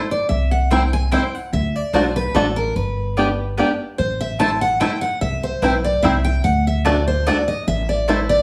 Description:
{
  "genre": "bluegrass",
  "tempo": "146 BPM",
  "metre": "3/4",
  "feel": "swing 54% on 8ths",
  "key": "unclear",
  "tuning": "A4 = 438 Hz",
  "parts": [
    { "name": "picked steel-string acoustic guitar", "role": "accompaniment", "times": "0.0-8.4 s", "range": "A4 to A5", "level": "-24 LUFS", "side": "equal", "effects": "none" },
    { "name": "upright bass", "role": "bass", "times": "0.3-8.4 s", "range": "G1 to D2", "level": "-24 LUFS", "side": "equal", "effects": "none" },
    { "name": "bluegrass banjo", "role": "arpeggios", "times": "0.7-8.2 s", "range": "A3 to G4", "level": "-23 LUFS", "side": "equal", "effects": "none" },
    { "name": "mandolin", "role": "stabs", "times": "0.7-8.2 s", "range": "A3 to A5", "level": "-27 LUFS", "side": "equal", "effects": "none" }
  ],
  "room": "wet studio reverb, RT60 0.8 s",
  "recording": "heard from further back in the room, studio reverb",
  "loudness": "-19 LUFS",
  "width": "mono",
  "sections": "0.0-8.4 A section",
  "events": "steel-string acoustic guitar solo 0.0-8.4",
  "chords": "0.3 C; 1.5 D; 2.8 G; 4.0 Am; 5.2 C; 6.4 D; 7.7 Am",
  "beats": "| 0.30 0.71 1.12 | 1.53 1.94 2.35 | 2.76 3.17 3.58 | 3.99 4.40 4.81 | 5.22 5.63 6.04 | 6.45 6.86 7.27 | 7.67 8.09"
}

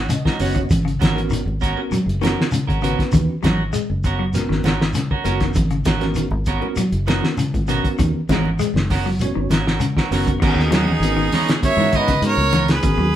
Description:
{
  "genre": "afrobeat",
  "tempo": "99 BPM",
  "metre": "4/4",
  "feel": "straight",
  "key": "G# minor",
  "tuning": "A4 = 440 Hz",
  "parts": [
    { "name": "bell-like tine electric piano", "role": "accompaniment", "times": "0.0-13.1 s", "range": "B3 to D#5", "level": "-26 LUFS", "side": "right 1 dB", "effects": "fast stereo tremolo" },
    { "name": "clean electric guitar", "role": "stabs", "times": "0.0-12.7 s", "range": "B3 to A#4", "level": "-26 LUFS", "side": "right 5 dB", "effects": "none" },
    { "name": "fingered electric bass", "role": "bass", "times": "0.0-13.2 s", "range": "F#1 to G#2", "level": "-22 LUFS", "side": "equal", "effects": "none" },
    { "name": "clean electric guitar", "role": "arpeggios", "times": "0.1-13.1 s", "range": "B2 to G#3", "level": "-25 LUFS", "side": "left 3 dB", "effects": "none" },
    { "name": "cloth-damped thuddy drum kit", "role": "drums", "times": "0.1-13.0 s", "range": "crash cymbal, hi-hat, kick drum, snare drum", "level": "-21 LUFS", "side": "equal", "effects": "none" },
    { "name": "congas", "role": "percussion", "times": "0.1-12.7 s", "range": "none", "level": "-25 LUFS", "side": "right 1 dB", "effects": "none" },
    { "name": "shekere", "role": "percussion", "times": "0.1-10.3 s", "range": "none", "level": "-27 LUFS", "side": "equal", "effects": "none" },
    { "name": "clear fiddle", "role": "melody", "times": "10.4-13.2 s", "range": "G#4 to E5", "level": "-22 LUFS", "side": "right 1 dB", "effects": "none" },
    { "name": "bright trumpet", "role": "second line", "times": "10.4-13.2 s", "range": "D#4 to C#5", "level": "-24 LUFS", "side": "right 3 dB", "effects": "none" }
  ],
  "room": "moderate studio reverb, RT60 0.6 s",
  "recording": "band playing live in one room",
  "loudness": "-16 LUFS",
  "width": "side -11 dB against mid",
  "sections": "0.0-10.4 A section; 10.4-13.2 B section",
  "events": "tine electric piano fill 0.0-0.7",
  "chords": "0.0 G#m11",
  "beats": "0.10 | 0.71 1.31 1.92 2.53 | 3.13 3.74 4.35 4.96 | 5.56 6.17 6.78 7.38 | 7.99 8.60 9.21 9.81 | 10.42 11.02 11.63 12.23 | 12.84"
}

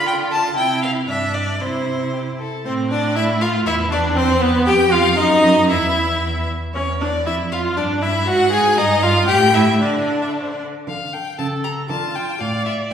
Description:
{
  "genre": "quick classical-period movement for string quartet",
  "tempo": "117 BPM",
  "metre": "2/4",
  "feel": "rubato",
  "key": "D minor from 6.7 s",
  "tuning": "A4 = 440 Hz",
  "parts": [
    { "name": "rich violin", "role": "melody", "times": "0.0-12.7 s", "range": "D4 to Bb5", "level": "-22 LUFS", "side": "left 3 dB", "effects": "none" },
    { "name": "rich violin", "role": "second line", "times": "0.0-12.9 s", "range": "B3 to A5", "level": "-22 LUFS", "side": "left 1 dB", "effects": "none" },
    { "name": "rich viola", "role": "accompaniment", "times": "0.0-12.9 s", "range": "B3 to D5", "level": "-21 LUFS", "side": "right 1 dB", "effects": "none" },
    { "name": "rich cello", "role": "bass", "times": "0.0-12.9 s", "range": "E2 to D3", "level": "-22 LUFS", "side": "right 2 dB", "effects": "none" }
  ],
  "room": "wet recital hall reverb, RT60 1.3 s",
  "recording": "recorded in a church or concert hall",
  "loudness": "-16 LUFS",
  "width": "side -8 dB against mid",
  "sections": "0.0-2.7 A section; 2.7-10.9 B section; 10.9-12.9 C section",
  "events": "none",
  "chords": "0.0 Dm; 0.6 C; 1.1 G5; 1.6 C; 2.7 Dm9/A; 3.7 Cmaj9/E; 4.7 Fsus2; 5.2 D#m/F#; 5.7 N.C.; 6.7 C#m/E; 7.3 N.C.; 7.8 G5; 8.3 F#sus2/G#; 8.8 Eb/G; 9.3 A5; 9.8 N.C.; 11.4 A7/C#; 11.9 Dm",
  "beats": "0.06 | 0.56 1.08 | 1.60 2.13 | 2.65 3.16 | 3.66 4.17 | 4.67 5.18 | 5.70 6.22 | 6.75 7.26 | 7.77 8.27 | 8.77 9.28 | 9.80 10.34 | 10.87 11.39 | 11.90 12.41 | 12.91"
}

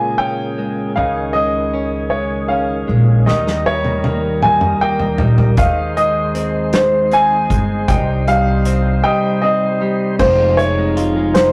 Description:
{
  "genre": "six-eight pop ballad",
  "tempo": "52 BPM (dotted quarters)",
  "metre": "6/8",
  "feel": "straight",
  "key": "unclear",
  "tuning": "A4 = 440 Hz",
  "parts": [
    { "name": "clear baby grand piano", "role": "melody", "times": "0.0-11.5 s", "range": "C5 to Ab5", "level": "-19 LUFS", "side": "equal", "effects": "none" },
    { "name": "direct-recorded clean electric guitar", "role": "accompaniment", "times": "0.0-11.5 s", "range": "F2 to F4", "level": "-24 LUFS", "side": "equal", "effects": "none" },
    { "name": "percussive tonewheel organ", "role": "sustained chords", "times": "0.0-11.5 s", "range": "C3 to C5", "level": "-27 LUFS", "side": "equal", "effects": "overdrive, slow rotary speaker" },
    { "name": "upright bass", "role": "bass", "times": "1.0-11.5 s", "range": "F1 to Eb2", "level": "-21 LUFS", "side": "equal", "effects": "none" },
    { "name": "loose indie drum kit", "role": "drums", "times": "3.3-11.5 s", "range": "crash cymbal, hi-hat, kick drum, snare drum, toms", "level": "-22 LUFS", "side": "equal", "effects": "none" },
    { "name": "mellow French horn section", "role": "second line", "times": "10.2-11.5 s", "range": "Eb4", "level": "-23 LUFS", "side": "equal", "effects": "none" }
  ],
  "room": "moderate studio reverb, RT60 0.5 s",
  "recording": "rough rehearsal-room recording, tube saturation",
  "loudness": "-16 LUFS",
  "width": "mono",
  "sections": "1.0-10.2 A section; 10.2-11.5 B section",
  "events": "drum fill 3.3-5.6",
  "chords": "0.0 Bbm7; 1.0 Dbsus2; 3.3 Eb; 5.6 Ab/Eb; 7.9 Cm; 10.2 Fm",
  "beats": "| 0.96 2.12 | 3.27 4.43 | 5.58 6.74 | 7.89 9.04 | 10.20 11.35"
}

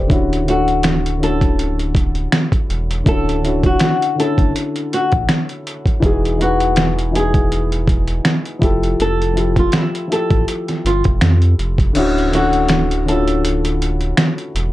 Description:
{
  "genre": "lo-fi hip hop",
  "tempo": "81 BPM",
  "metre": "4/4",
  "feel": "swing 55% on 16ths",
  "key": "D major",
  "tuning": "A4 = 441 Hz",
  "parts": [
    { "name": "dark upright piano", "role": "accompaniment", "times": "0.0-14.7 s", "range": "D3 to E5", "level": "-20 LUFS", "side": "left 2 dB", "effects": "cassette tape, low-pass filter" },
    { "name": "sub bass with octave", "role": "bass", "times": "0.0-14.7 s", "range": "D1 to F2", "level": "-19 LUFS", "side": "equal", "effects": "none" },
    { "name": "dusty soul sampler-style drum kit", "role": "drums", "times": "0.1-14.7 s", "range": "crash cymbal, finger snaps, hi-hat, kick drum, snare drum", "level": "-17 LUFS", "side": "equal", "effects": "overdrive" },
    { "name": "flamenco guitar", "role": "melody", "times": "0.5-13.6 s", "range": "E4 to A4", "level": "-20 LUFS", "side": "left 1 dB", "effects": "low-pass filter, plate reverb" }
  ],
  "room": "moderate small room reverb, RT60 0.5 s",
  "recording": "dark, warm production",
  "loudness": "-14 LUFS",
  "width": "side -16 dB against mid",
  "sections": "0.0-12.0 A section; 12.0-14.7 A section",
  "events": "kick muted 12.0-14.7",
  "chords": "0.1 Dmaj9; 6.0 Emaj9; 8.6 Fmaj9; 12.0 Dmaj9",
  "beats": "| 0.10 0.84 1.58 2.32 | 3.06 3.81 4.54 5.29 | 6.03 6.77 7.51 8.25 | 8.99 9.73 10.47 11.21 | 11.95 12.69 13.43 14.18"
}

